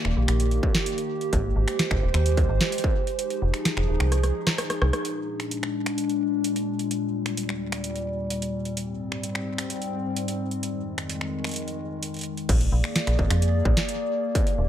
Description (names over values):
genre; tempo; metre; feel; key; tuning
IDM; 129 BPM; 4/4; straight; unclear; A4 = 438 Hz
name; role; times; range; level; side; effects
warbly tape-like pad; sustained chords; 0.0-14.7 s; Eb2 to D5; -28 LUFS; left 1 dB; chorus, built-in reverb
metallic FM bass; bass; 0.0-4.9, 12.5-14.7 s; Eb1 to F2; -22 LUFS; equal; none
booming analog drum machine; drums; 0.0-14.6 s; crash cymbal, finger snaps, hi-hat, rim click, snare drum; -28 LUFS; right 1 dB; none
electronic kick drum; drums; 0.6-2.9, 12.5-14.4 s; none; -25 LUFS; equal; distortion
room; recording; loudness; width
light reverb, digital ambience; none; -23 LUFS; side -10 dB against mid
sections
0.0-5.0 A section; 5.0-12.5 B section; 12.5-14.7 C section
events
kick drops out 3.2-5.0; drum fill 4.1-5.0; band accent 4.9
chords
0.0 Eb; 1.3 Abmaj7; 3.2 Fm7; 5.0 Bb7; 6.9 Eb; 8.8 Abmaj7; 10.6 Fm7; 12.5 Bb7